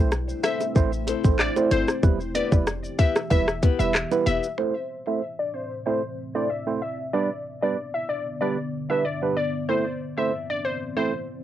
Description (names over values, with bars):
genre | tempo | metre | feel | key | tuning
dancehall | 94 BPM | 4/4 | straight | A minor | A4 = 440 Hz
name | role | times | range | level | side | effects
percussive organ stab | accompaniment | 0.0-11.1 s | G3 to C5 | -24 LUFS | right 5 dB | chorus, low-pass filter, cassette tape
deep dark ambient pad | sustained chords | 0.2-11.4 s | G2 to G4 | -34 LUFS | left 1 dB | chorus, built-in reverb, low-pass filter, cassette tape
short 808-style bass | bass | 0.0-4.4 s | E1 to B1 | -27 LUFS | equal | none
island pop drum kit | drums | 0.1-4.6 s | handclaps, hi-hat, kick drum, rim click, shaker | -21 LUFS | equal | cassette tape
bongos | percussion | 0.1-4.4 s | none | -35 LUFS | right 8 dB | none
glassy wavetable pluck | melody | 0.4-11.1 s | C5 to E5 | -28 LUFS | left 2 dB | chorus, low-pass filter, cassette tape, analog delay
nylon-string guitar | arpeggios | 0.4-4.5 s | B3 to C5 | -28 LUFS | left 8 dB | cassette tape
room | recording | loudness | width
moderate booth ambience, RT60 0.2 s | home recording on cassette | -22 LUFS | side -12 dB against mid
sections
0.0-4.6 A section; 4.6-11.4 B section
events
filter sweep 4.6-11.4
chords
0.0 Am; 2.0 Em; 4.6 Am; 7.1 G; 9.7 Am